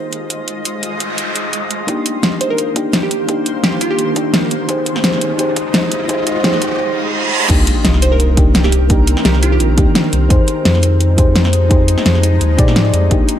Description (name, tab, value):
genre	liquid drum and bass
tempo	171 BPM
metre	4/4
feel	swing 54% on 16ths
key	C minor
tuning	A4 = 441 Hz
part	mellow FM electric piano	accompaniment	0.0-13.4 s	Bb3 to D5	-19 LUFS	left 2 dB	chorus, low-pass filter, dub echo
part	shimmering ambient pad	sustained chords	0.0-13.4 s	Eb3 to Eb5	-23 LUFS	right 1 dB	chorus, built-in reverb
part	pop drum kit	drums	0.1-13.4 s	crash cymbal, hi-hat, snare drum	-17 LUFS	equal	overdrive
part	noise sweep, riser, reverse cymbal and sub drop	sound effects	0.7-8.9 s	none	-22 LUFS	right 1 dB	none
part	electronic kick drum	drums	1.9-13.2 s	none	-14 LUFS	equal	overdrive, high-pass filter on kick, high-pass filter on room
part	glassy wavetable pluck	melody	2.4-4.4, 8.0-10.0 s	F4 to C5	-22 LUFS	right 2 dB	chorus, dub echo
part	warm sub bass	bass	7.5-13.2 s	Bb1 to Bb2	-13 LUFS	equal	tube saturation
room	moderate recital hall reverb, RT60 1.5 s, digital ambience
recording	none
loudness	-12 LUFS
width	side -10 dB against mid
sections	0.0-1.9 A section; 1.9-7.5 B section; 7.5-13.4 C section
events	filter sweep on FM electric piano 0.0-1.9; filter sweep on ambient pad 0.0-1.9; noise sweep 0.7-1.9; build-up 1.9-7.5; riser 1.9-6.8; reverse cymbal 6.8-7.5; drop 7.5-13.4; impact 7.5-8.9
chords	0.0 Fm7; 1.9 Cm7; 4.7 Fm7; 7.5 Cm7; 10.3 Fm7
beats	0.13 | 0.48 0.83 1.18 1.53 | 1.88 2.23 2.58 2.94 | 3.29 3.64 3.99 4.34 | 4.69 5.04 5.39 5.74 | 6.09 6.44 6.79 7.15 | 7.50 7.85 8.20 8.55 | 8.90 9.25 9.60 9.95 | 10.30 10.65 11.01 11.36 | 11.71 12.06 12.41 12.76 | 13.11